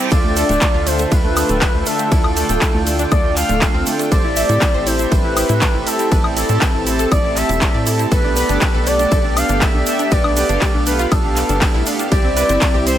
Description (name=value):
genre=progressive house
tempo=120 BPM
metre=4/4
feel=straight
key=D dorian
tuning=A4 = 439 Hz
part: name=lush unison pad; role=sustained chords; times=0.0-13.0 s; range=D3 to G5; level=-25 LUFS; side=equal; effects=chorus, sidechain pumping
part: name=wide unison pluck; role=arpeggios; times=0.0-12.9 s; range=A3 to E5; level=-24 LUFS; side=equal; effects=sidechain pumping, dub echo
part: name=soft supersaw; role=stabs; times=0.0-13.0 s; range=B3 to A5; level=-23 LUFS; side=right 2 dB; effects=cassette tape, sidechain pumping
part: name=expressive synth lead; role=melody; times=0.1-13.0 s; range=A4 to F5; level=-21 LUFS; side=equal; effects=analog chorus, cassette tape, dub echo
part: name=tight sequencer bass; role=bass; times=0.1-13.0 s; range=D1 to A2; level=-21 LUFS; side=equal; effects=tube saturation, sidechain pumping
part: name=electronic kick drum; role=drums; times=0.1-12.7 s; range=none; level=-17 LUFS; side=equal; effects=overdrive
part: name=house drum kit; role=drums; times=0.1-13.0 s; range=handclaps, hi-hat, ride cymbal, woodblock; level=-23 LUFS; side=equal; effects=overdrive, sidechain pumping on hats, sidechain pumping on perc, sidechain pumping on cymbals
part: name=egg shaker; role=percussion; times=0.1-13.0 s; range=none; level=-29 LUFS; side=right 1 dB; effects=none
room=digital ambience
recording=none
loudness=-13 LUFS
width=side -11 dB against mid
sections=0.0-13.0 A section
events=none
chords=0.1 Dmadd9; 4.1 Am7; 8.1 Gadd9; 12.1 C